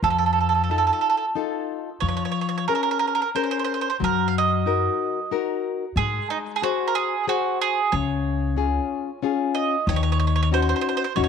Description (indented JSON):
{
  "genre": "italian folk, Italian serenade",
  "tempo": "92 BPM",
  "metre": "3/4",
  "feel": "straight",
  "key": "unclear",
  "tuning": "A4 = 441 Hz",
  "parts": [
    { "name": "bowl-back mandolin", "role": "melody", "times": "0.0-11.3 s", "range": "Eb4 to F5", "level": "-23 LUFS", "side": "right 7 dB", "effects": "none" },
    { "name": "nylon-string guitar", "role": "accompaniment", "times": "0.0-11.3 s", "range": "Db3 to C5", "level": "-25 LUFS", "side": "left 10 dB", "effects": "none" },
    { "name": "upright bass", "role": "bass", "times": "0.0-11.3 s", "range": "Db2 to Ab2", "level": "-24 LUFS", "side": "equal", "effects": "none" }
  ],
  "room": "wet spring reverb, RT60 2.1 s",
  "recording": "1960s-style stereo with parts hard left and right",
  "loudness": "-21 LUFS",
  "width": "side -6 dB against mid",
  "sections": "0.0-9.9 A section; 9.9-11.3 B section",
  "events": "none",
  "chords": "0.0 F7; 2.0 Bbm7/F; 4.0 Ebm/Gb; 6.0 Ab7; 7.9 Db; 9.9 Ebm7"
}